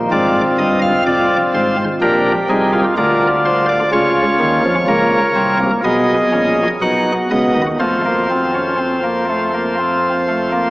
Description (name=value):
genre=classical, baroque-style 4-part fugue for pipe organ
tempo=62 BPM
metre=4/4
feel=straight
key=Bb minor from 3.9 s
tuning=A4 = 440 Hz
part: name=chamber organ, cornet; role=solo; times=0.0-10.7 s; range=F1 to F#5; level=-13 LUFS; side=equal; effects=none
room=wet cathedral reverb, RT60 4.4 s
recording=small speaker sound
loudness=-13 LUFS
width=side -20 dB against mid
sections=0.0-10.7 A section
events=none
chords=0.1 Fm; 2.0 Bb; 3.9 Bbm/Db; 5.8 B; 7.8 F